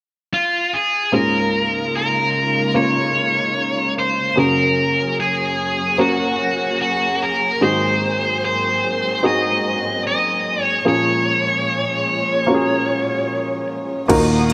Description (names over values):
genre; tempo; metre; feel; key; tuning
pop ballad; 74 BPM; 4/4; straight; Db major; A4 = 437 Hz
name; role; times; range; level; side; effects
high-gain lead guitar; melody; 0.3-13.7 s; F4 to Eb5; -21 LUFS; equal; distortion
dark baby grand piano; accompaniment; 1.1-14.5 s; Db2 to Bb4; -24 LUFS; equal; subtle chorus
warm studio string section; sustained chords; 1.1-14.5 s; Gb2 to Eb6; -28 LUFS; equal; none
dark symphonic cello section; second line; 14.1-14.5 s; Bb3; -24 LUFS; equal; none
fingerpicked steel-string acoustic guitar; arpeggios; 14.1-14.5 s; Eb3; -28 LUFS; equal; none
fingered electric bass; bass; 14.1-14.5 s; Eb2; -23 LUFS; equal; none
smooth R&B drum kit; drums; 14.1-14.5 s; crash cymbal, hi-hat, kick drum; -26 LUFS; equal; none
room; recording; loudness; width
moderate plate reverb, RT60 2.6 s; bright 1980s-style digital production; -19 LUFS; mono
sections
0.0-1.1 A section; 1.1-14.1 B section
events
none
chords
0.0 N.C.; 1.1 Db6; 4.4 Gbadd9; 7.6 Ab7; 10.9 Bbm7